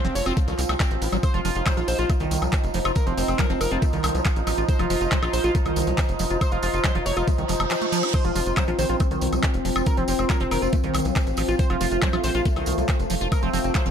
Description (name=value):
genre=psychedelic trance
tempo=139 BPM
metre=4/4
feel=straight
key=unclear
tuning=A4 = 442 Hz
part: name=overdriven synth lead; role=melody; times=0.0-13.9 s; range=C4 to Db5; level=-30 LUFS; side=equal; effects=distortion, phaser, sidechain pumping, ping-pong delay
part: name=bubbling stepped-filter texture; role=sustained chords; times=0.0-13.9 s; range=F3 to Eb4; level=-30 LUFS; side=left 1 dB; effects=chorus, built-in reverb, sidechain pumping
part: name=liquid acid bass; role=riff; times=0.0-13.9 s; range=Eb3 to F4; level=-30 LUFS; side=moving between left 2 dB and right 4 dB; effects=phaser, auto-pan, sidechain pumping, tape echo
part: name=tight sequencer bass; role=bass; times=0.0-13.9 s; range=F1 to C2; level=-27 LUFS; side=equal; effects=tube saturation
part: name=drum and bass drum kit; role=drums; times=0.0-13.9 s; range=crash cymbal, handclaps, hi-hat, woodblock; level=-30 LUFS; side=left 1 dB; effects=overdrive
part: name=tambourine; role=percussion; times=0.0-13.9 s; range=none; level=-38 LUFS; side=right 5 dB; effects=none
part: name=warbly tape-like pad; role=texture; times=0.0-13.9 s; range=F4 to Bb5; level=-30 LUFS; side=right 1 dB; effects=chorus, built-in reverb, sidechain pumping
part: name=electronic kick drum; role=drums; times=0.4-13.8 s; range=none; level=-22 LUFS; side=equal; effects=overdrive
part: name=reverse cymbal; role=sound effects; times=7.5-8.1 s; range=none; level=-31 LUFS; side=right 5 dB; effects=none
room=light reverb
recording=dark, warm production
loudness=-20 LUFS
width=side -8 dB against mid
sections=0.0-13.9 A section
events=reverse cymbal 7.5-8.1; drum fill 7.9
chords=0.0 F5